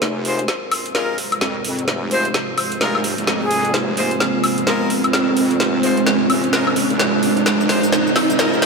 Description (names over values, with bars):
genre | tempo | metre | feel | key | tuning
bass house | 129 BPM | 4/4 | swing 61% on 16ths | F minor | A4 = 441 Hz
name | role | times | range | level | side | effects
dark analog pad | sustained chords | 0.0-8.7 s | Ab3 to C5 | -20 LUFS | right 2 dB | chorus, phaser
wobble bass | bass | 0.0-7.9 s | F1 to F2 | -26 LUFS | equal | chorus, tube saturation, high-pass filter
garage drum kit | drums | 0.0-8.7 s | hi-hat, shaker, snare drum, woodblock | -20 LUFS | equal | overdrive
riser | sound effects | 1.4-8.7 s | none | -24 LUFS | right 1 dB | none
bright horn section | stabs | 0.2-8.6 s | Ab3 to C5 | -25 LUFS | left 2 dB | tape echo
bright silver concert flute | melody | 2.1-3.7 s | Ab4 to C5 | -26 LUFS | equal | tape echo
room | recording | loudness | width
wet cathedral reverb, RT60 6.3 s | dreamy mix soaked in reverb, high-pass filter | -16 LUFS | side -4 dB against mid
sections
0.0-8.7 A section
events
build-up 0.0-8.7; drum fill 0.0-8.7; filter sweep on analog synth pad 0.0-8.7; riser 1.4-8.7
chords
0.0 Fm